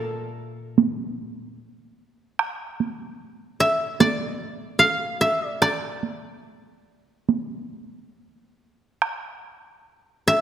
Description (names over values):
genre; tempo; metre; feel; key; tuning
japanese traditional, Japanese chamber music; 74 BPM; 4/4; rubato; D hirajoshi; A4 = 441 Hz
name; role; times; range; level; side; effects
koto; melody; 0.0-10.4 s; A4 to F5; -20 LUFS; equal; none
koto; accompaniment; 0.0-1.6 s; Bb2; -38 LUFS; left 3 dB; none
solo taiko drums; percussion; 0.8-9.2 s; none; -24 LUFS; right 6 dB; none
room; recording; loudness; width
moderate concert hall reverb, RT60 1.9 s; none; -22 LUFS; side -10 dB against mid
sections
0.0-9.0 A section; 9.0-10.4 B section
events
none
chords
none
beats
0.78 1.59 | 2.39 3.20 4.00 4.81 | 5.63 6.45 7.29 8.16 | 9.02 9.85